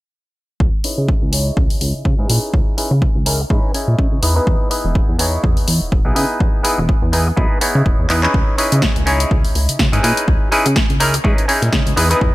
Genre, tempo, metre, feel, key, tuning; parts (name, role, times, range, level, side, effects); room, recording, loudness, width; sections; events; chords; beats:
filtered disco house; 124 BPM; 4/4; swing 56% on 16ths; C# minor; A4 = 440 Hz
plucky analog bass; bass; 0.6-12.3 s; E1 to C#3; -18 LUFS; equal; sidechain pumping, low-pass filter
electronic kick drum; drums; 0.6-12.3 s; -17 LUFS; equal
clav; accompaniment; 0.8-12.3 s; B3 to C#5; -20 LUFS; equal; phaser, sidechain pumping, low-pass filter
house drum kit; drums; 0.8-12.2 s; handclaps, hi-hat, snare drum; -21 LUFS; left 1 dB; sidechain pumping on hats
little or no reverb; -13 LUFS; side -18 dB against mid
0.6-8.3 A section; 8.3-12.3 B section
filter sweep 0.6-8.3; drum fill 8.1
0.6 C#m9; 4.2 Emaj7; 8.3 C#m9
| 0.60 1.09 1.57 2.05 | 2.54 3.02 3.51 3.99 | 4.47 4.96 5.44 5.92 | 6.41 6.89 7.38 7.86 | 8.34 8.83 9.31 9.80 | 10.28 10.76 11.25 11.73 | 12.21